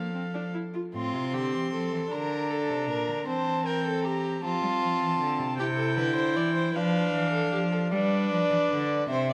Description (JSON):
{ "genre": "classical, baroque-style fugue for string quartet", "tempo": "52 BPM (dotted quarters)", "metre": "6/8", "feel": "straight", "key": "F major", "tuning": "A4 = 441 Hz", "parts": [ { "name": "dark violin", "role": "melody", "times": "0.0-9.3 s", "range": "D5 to C6", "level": "-34 LUFS", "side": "equal", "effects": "none" }, { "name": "warm violin", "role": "second line", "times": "0.0-9.3 s", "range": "F4 to D5", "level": "-34 LUFS", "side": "equal", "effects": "none" }, { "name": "warm viola", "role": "accompaniment", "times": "0.0-9.3 s", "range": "Bb3 to F4", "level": "-33 LUFS", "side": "equal", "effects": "none" }, { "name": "rich cello", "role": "bass", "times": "0.0-9.3 s", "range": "A2 to G3", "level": "-33 LUFS", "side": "equal", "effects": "none" } ], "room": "moderate concert hall reverb, RT60 2.3 s", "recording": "none", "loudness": "-28 LUFS", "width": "mono", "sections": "0.9-9.3 A section", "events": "none", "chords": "0.0 F; 0.9 F/A; 2.1 Bb/D; 3.3 C7/E; 4.4 F; 5.6 C; 6.8 F; 7.9 G" }